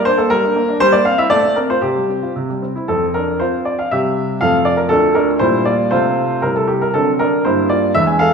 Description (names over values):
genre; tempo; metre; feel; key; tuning
classical-period piano sonatina; 118 BPM; 2/4; rubato; F major; A4 = 441 Hz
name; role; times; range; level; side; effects
clear baby grand piano; solo; 0.0-8.3 s; D2 to G#5; -13 LUFS; equal; none
room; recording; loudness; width
wet recital hall reverb, RT60 1.6 s; heard from further back in the room; -13 LUFS; side -5 dB against mid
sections
0.0-2.9 A section; 2.9-8.3 B section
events
none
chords
0.0 Gm; 0.8 C7/G; 1.3 F/A; 1.8 Csus4; 2.4 C; 2.9 F5; 3.9 C; 4.4 F; 4.9 Dm; 5.4 Gm7/Bb; 5.9 F/C; 6.4 C; 6.9 D7; 7.4 Gm